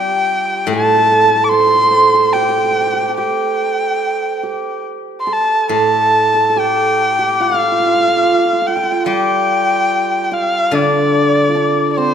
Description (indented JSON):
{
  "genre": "chinese traditional, Chinese chamber ensemble",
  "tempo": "72 BPM",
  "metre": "4/4",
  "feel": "rubato",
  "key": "unclear",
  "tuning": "A4 = 436 Hz",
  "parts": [
    { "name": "warm erhu", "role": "melody", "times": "0.0-12.1 s", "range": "C5 to D6", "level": "-14 LUFS", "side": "equal", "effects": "none" },
    { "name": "hammered dulcimer", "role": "second line", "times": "0.0-12.1 s", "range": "C4 to C5", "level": "-19 LUFS", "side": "right 4 dB", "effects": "none" },
    { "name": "steel-string zither", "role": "accompaniment", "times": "0.0-12.1 s", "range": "A2 to G3", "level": "-20 LUFS", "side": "left 1 dB", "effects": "none" }
  ],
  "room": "moderate concert hall reverb, RT60 2.4 s",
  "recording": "minimal, uncompressed stereo recording",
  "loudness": "-12 LUFS",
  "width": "side -8 dB against mid",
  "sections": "0.0-12.1 A section",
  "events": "none",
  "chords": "none"
}